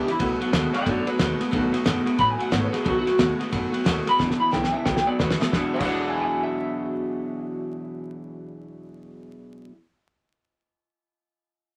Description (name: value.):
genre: rockabilly.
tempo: 180 BPM.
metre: 4/4.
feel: swing 64% on 8ths.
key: E mixolydian.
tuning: A4 = 440 Hz.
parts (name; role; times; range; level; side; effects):
electric guitar through a small old amp; melody; 0.0-9.7 s; E4 to B5; -28 LUFS; equal; tremolo.
picked steel-string acoustic guitar; accompaniment; 0.0-9.7 s; E2 to F#4; -31 LUFS; equal; none.
electric guitar through a small old amp; riff; 0.0-9.7 s; E2 to F#4; -31 LUFS; equal; none.
upright bass; bass; 0.0-9.7 s; E1 to A2; -34 LUFS; equal; none.
cloth-damped thuddy drum kit; drums; 0.1-5.9 s; crash cymbal, kick drum, ride cymbal, snare drum; -29 LUFS; equal; none.
room: light reverb.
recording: vinyl crackle.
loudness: -24 LUFS.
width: mono.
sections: 0.0-5.5 A section; 5.5-8.2 B section.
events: drum fill 4.2-5.5.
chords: 0.2 B7; 4.2 E7; 4.9 B7; 5.5 E9.